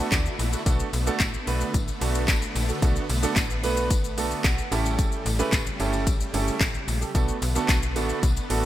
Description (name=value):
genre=dance-pop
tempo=111 BPM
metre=4/4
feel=straight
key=B minor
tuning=A4 = 441 Hz
part: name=clear concert grand piano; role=accompaniment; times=0.0-8.7 s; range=A3 to B5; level=-29 LUFS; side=right 4 dB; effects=lush chorus, sidechain pumping
part: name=supersaw chords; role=sustained chords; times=0.0-8.7 s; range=C#3 to F#4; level=-33 LUFS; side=equal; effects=lush chorus, sidechain pumping
part: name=slap-like FM bass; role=bass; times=0.1-8.7 s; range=G1 to D2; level=-28 LUFS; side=left 1 dB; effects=sidechain pumping
part: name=house drum kit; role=drums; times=0.1-8.6 s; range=handclaps, hi-hat, kick drum, shaker, snare drum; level=-25 LUFS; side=left 1 dB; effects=gated reverb
part: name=tambourine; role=percussion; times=0.1-8.6 s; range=none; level=-40 LUFS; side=left 4 dB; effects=none
room=light reverb, digital ambience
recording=bright 1980s-style digital production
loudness=-22 LUFS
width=side -13 dB against mid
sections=0.0-8.7 A section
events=grand piano fill 0.0-0.7, 4.2-5.0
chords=0.0 D6; 0.7 Bm7; 4.7 A7; 7.1 Bm7